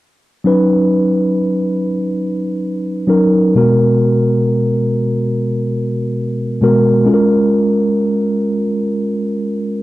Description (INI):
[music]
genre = hip hop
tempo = free time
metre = none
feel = none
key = unclear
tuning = A4 = 440 Hz
[part]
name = mellow tine electric piano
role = accompaniment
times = 0.4-9.8 s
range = B2 to B4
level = -13 LUFS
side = equal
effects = medium stereo tremolo, cassette tape, low-pass filter
[sound]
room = moderate spring reverb, RT60 2.1 s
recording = cassette tape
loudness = -13 LUFS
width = side -16 dB against mid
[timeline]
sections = 0.4-9.8 A section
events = none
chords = 0.4 C#9sus4; 3.5 G#m9/B; 7.1 A#m7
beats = free time